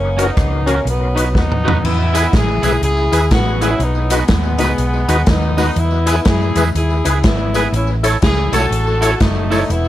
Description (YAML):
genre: ska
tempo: 122 BPM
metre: 4/4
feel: swing 62% on 8ths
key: unclear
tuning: A4 = 440 Hz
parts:
  - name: clear horn section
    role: melody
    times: 0.0-9.9 s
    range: F#3 to A4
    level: -20 LUFS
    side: left 1 dB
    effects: tape echo
  - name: hollow-body short-scale fingered electric bass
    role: bass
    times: 0.0-9.9 s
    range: E1 to F#2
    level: -17 LUFS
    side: equal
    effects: none
  - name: twangy electric guitar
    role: accompaniment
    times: 0.2-9.6 s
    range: C#4 to C#5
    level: -21 LUFS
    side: right 5 dB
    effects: none
  - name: tonewheel organ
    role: stabs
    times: 0.2-9.6 s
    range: C#4 to C#5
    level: -22 LUFS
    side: left 3 dB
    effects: chorus vibrato, fast rotary speaker, tape echo
  - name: swinging big-band drum kit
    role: drums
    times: 0.2-9.8 s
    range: crash cymbal, hi-hat, kick drum, rim click, snare drum, toms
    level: -18 LUFS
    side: equal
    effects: tape echo
  - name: tambourine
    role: percussion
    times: 2.1-9.6 s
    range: none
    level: -35 LUFS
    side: left 3 dB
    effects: tape echo
room: light reverb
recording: none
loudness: -13 LUFS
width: side -13 dB against mid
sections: 0.0-1.8 A section; 1.8-9.9 B section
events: drum fill 1.3-1.8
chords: 0.0 F#; 0.9 B; 1.8 E; 3.8 B; 5.8 E; 7.7 A